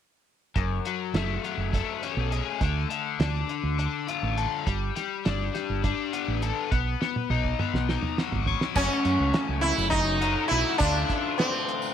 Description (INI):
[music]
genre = psychedelic rock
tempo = 205 BPM (eighths)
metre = 7/8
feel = straight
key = unclear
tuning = A4 = 438 Hz
[part]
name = overdriven electric guitar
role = riff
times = 0.6-11.9 s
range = F#2 to C#5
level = -29 LUFS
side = left 10 dB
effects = flanger
[part]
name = fingered electric bass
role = bass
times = 0.6-11.0 s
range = F#1 to F#2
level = -28 LUFS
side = right 2 dB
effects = none
[part]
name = cloth-damped thuddy drum kit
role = drums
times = 0.6-11.8 s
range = crash cymbal, hi-hat, kick drum, snare drum, toms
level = -30 LUFS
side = right 2 dB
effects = none
[part]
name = sitar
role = melody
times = 8.8-11.9 s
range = B#3 to E4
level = -24 LUFS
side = right 1 dB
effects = tape echo
[part]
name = tambourine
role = percussion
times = 8.8-11.9 s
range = none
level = -42 LUFS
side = right 18 dB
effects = none
[sound]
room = light reverb, small room ambience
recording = 1960s-style stereo with parts hard left and right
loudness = -24 LUFS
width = side -9 dB against mid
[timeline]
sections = 0.6-8.8 A section; 8.8-11.9 B section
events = drum fill 7.0-8.8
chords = 0.6 F#madd9; 2.6 Dm; 4.7 Gadd9; 6.7 Badd9; 8.8 F#m; 10.8 Dm